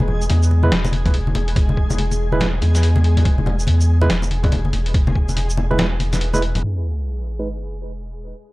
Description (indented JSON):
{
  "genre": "deep dubstep",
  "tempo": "142 BPM",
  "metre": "4/4",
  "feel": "swing 61% on 16ths, half-time",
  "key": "unclear",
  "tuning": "A4 = 441 Hz",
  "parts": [
    { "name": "soft dub sub bass", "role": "bass", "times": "0.0-6.6 s", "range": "E1 to E2", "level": "-18 LUFS", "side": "equal", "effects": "none" },
    { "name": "congas", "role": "percussion", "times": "0.0-6.6 s", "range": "none", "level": "-24 LUFS", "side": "left 2 dB", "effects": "none" },
    { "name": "backwards swelling texture", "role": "texture", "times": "0.0-6.6 s", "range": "G#3 to G#4", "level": "-31 LUFS", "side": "left 1 dB", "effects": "built-in reverb" },
    { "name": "trip hop sampler-style drum kit", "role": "drums", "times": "0.2-8.3 s", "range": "crash cymbal, hi-hat, shaker, snare drum", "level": "-25 LUFS", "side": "equal", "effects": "low-pass filter on hats, small room reverb, low-pass filter on cymbals, low-pass filter on perc, low-pass filter on snare" },
    { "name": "barky tine electric piano", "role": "stabs", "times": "0.6-7.5 s", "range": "G#3 to B4", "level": "-26 LUFS", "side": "right 3 dB", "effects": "overdrive, low-pass filter, dub echo" },
    { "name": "electronic kick drum", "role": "drums", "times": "1.1-5.3 s", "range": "none", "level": "-18 LUFS", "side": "equal", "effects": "small room reverb" },
    { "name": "sub drop", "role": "sound effects", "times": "6.6-8.3 s", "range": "none", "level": "-25 LUFS", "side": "equal", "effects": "none" }
  ],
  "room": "little or no reverb",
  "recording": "dry, gritty hardware recording, cassette tape, low-pass filter",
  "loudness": "-16 LUFS",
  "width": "side -20 dB against mid",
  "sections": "0.0-6.6 A section; 6.6-8.5 B section",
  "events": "impact 6.6-8.3; filter sweep 6.6-8.5",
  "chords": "0.0 E; 6.6 G#m"
}